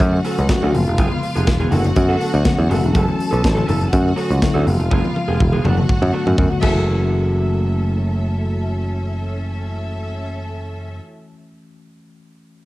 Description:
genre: disco.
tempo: 122 BPM.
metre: 4/4.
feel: straight.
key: F# minor.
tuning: A4 = 436 Hz.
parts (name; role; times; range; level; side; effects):
clear studio string section; second line; 0.0-11.0 s; C#4 to A5; -28 LUFS; equal; cassette tape.
mellow tine electric piano; accompaniment; 0.0-12.7 s; C#3 to F#4; -24 LUFS; left 2 dB; slow stereo tremolo, cassette tape.
picked electric bass; bass; 0.0-11.0 s; E1 to F#2; -18 LUFS; equal; none.
modern studio drum kit; drums; 0.0-6.7 s; crash cymbal, hi-hat, kick drum, snare drum, toms; -21 LUFS; equal; cassette tape.
congas; percussion; 0.0-7.1 s; none; -27 LUFS; left 3 dB; none.
electric guitar through a small old amp; accompaniment; 0.1-11.1 s; A3 to A4; -27 LUFS; right 3 dB; cassette tape.
room: light reverb, small room ambience.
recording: home recording on cassette.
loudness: -16 LUFS.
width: side -18 dB against mid.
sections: 0.0-6.9 A section; 6.9-10.8 B section.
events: drum fill 4.9-6.9.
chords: 0.0 Dmaj7/F#; 0.7 C#7; 1.7 Bm7/F#; 2.9 F#m7; 3.9 Dmaj7/F#; 4.7 C#7; 5.6 Bm7/F#; 6.6 F#m7.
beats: 0.00 0.49 | 0.98 1.47 1.96 2.45 | 2.94 3.43 3.92 4.42 | 4.91 5.40 5.89 6.38 | 6.87 7.36 7.85 8.34 | 8.83 9.33 9.82 10.31.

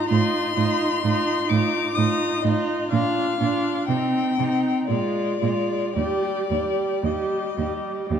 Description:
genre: classical, slow romantic movement for string quartet.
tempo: 55-64 BPM.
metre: 3/4.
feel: rubato.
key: Eb major.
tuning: A4 = 436 Hz.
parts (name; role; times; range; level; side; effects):
warm violin; melody; 0.0-8.1 s; D5 to Eb6; -27 LUFS; left 9 dB; none.
clear violin; second line; 0.0-8.2 s; Eb4 to G4; -27 LUFS; left 1 dB; none.
rich viola; accompaniment; 0.0-8.2 s; G3 to Eb4; -26 LUFS; right 3 dB; none.
rich cello; bass; 0.1-8.2 s; Eb2 to C3; -26 LUFS; right 4 dB; none.
room: wet recital hall reverb, RT60 1.6 s.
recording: dark, warm production.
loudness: -20 LUFS.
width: side -8 dB against mid.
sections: 0.0-8.2 A section.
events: none.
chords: 0.1 F7/A; 2.9 Bb; 3.9 Cm; 4.9 Bb7; 6.0 Eb.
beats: | 0.09 1.03 1.96 | 2.92 3.89 4.90 | 5.96 7.04 8.09.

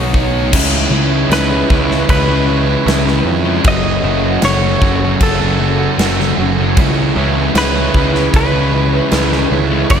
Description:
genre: rock, shoegaze and dream pop.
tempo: 77 BPM.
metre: 4/4.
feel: straight.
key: C# minor.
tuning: A4 = 440 Hz.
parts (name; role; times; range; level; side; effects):
evolving wavetable pad; sustained chords; 0.0-10.0 s; C#3 to C#6; -25 LUFS; right 1 dB; chorus, built-in reverb.
overdriven electric guitar; riff; 0.0-10.0 s; F#2 to C#5; -18 LUFS; right 12 dB; reverse reverb.
thick fuzz guitar; riff; 0.0-10.0 s; F#2 to C#5; -19 LUFS; left 10 dB; distortion, ensemble chorus.
fuzz picked electric bass; bass; 0.0-10.0 s; F#1 to E#2; -17 LUFS; equal; overdrive.
big rock drum kit; drums; 0.1-10.0 s; crash cymbal, kick drum, snare drum; -17 LUFS; equal; none.
direct-recorded clean electric guitar; melody; 1.3-10.0 s; A4 to D#5; -20 LUFS; equal; analog chorus, analog delay.
room: light reverb.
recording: none.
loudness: -11 LUFS.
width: side -8 dB against mid.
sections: 0.5-10.0 A section.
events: none.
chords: 0.0 Badd9; 0.5 C#m7; 3.6 F#m; 6.8 C#m7.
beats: | 0.53 1.31 2.09 2.87 | 3.65 4.43 5.21 5.99 | 6.77 7.55 8.33 9.12 | 9.90.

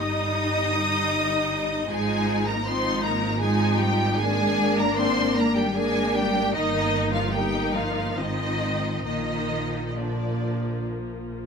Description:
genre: classical, slow romantic movement for string orchestra.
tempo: 66-80 BPM.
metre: 3/4.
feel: rubato.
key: unclear.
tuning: A4 = 440 Hz.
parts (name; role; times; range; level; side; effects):
rich studio violin section; melody; 0.0-10.9 s; D5 to Eb6; -28 LUFS; right 1 dB; none.
rich studio violin section; second line; 0.0-10.9 s; D4 to Eb5; -30 LUFS; equal; none.
rich studio viola section; accompaniment; 0.0-11.5 s; F3 to Eb4; -27 LUFS; left 2 dB; none.
rich studio cello section; bass; 0.0-10.8 s; D3 to Eb4; -29 LUFS; equal; none.
warm studio double bass section; bass; 0.0-11.5 s; G1 to Bb1; -29 LUFS; right 3 dB; none.
room: light reverb.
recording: close, detailed microphones.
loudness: -22 LUFS.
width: side -6 dB against mid.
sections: 0.0-11.5 A section.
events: none.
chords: 0.0 Eb/G; 1.9 Fm7/Ab; 4.2 Bb7/Ab; 6.5 Eb/G; 8.2 Fm/Ab; 9.1 Bb.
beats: 0.35 1.13 | 1.90 2.66 3.42 | 4.20 4.98 5.76 | 6.55 7.34 8.19 | 9.06 9.96 10.85.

